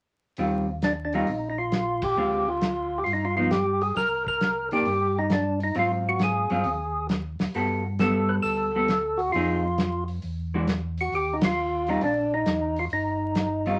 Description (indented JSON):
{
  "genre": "soul jazz organ trio",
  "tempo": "134 BPM",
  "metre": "4/4",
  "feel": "swing 68% on 8ths",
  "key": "Eb major",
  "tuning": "A4 = 440 Hz",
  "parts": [
    { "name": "vintage hollow-body jazz guitar", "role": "accompaniment", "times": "0.4-13.8 s", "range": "D3 to A4", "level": "-29 LUFS", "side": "equal", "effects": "none" },
    { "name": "mellow tonewheel organ", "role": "bass", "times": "0.4-13.8 s", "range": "G1 to Ab2", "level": "-34 LUFS", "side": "equal", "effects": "chorus vibrato, slow rotary speaker" },
    { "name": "warm soul drum kit", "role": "drums", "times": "0.4-13.7 s", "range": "hi-hat, kick drum, ride cymbal, snare drum", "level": "-30 LUFS", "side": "equal", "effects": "none" },
    { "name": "percussive tonewheel organ", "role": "melody", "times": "0.8-13.8 s", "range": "D4 to B4", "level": "-27 LUFS", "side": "equal", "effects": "slow rotary speaker, overdrive" }
  ],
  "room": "moderate studio ambience, RT60 0.5 s",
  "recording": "vinyl crackle",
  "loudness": "-26 LUFS",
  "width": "mono",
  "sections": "0.4-13.8 A section",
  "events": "band accent 1.9, 11.3",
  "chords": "0.4 Eb69; 2.2 Dm7b5; 3.1 G7b13; 4.0 Cm9; 5.8 Ab6; 7.5 Gmaj9; 9.3 Fm7; 10.2 E9; 11.1 Ebadd9",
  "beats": "| 0.38 0.82 1.27 1.72 | 2.17 2.62 3.07 3.51 | 3.96 4.41 4.86 5.30 | 5.75 6.20 6.65 7.10 | 7.54 7.99 8.44 8.89 | 9.33 9.78 10.23 10.68 | 11.12 11.57 12.02 12.46 | 12.91 13.36"
}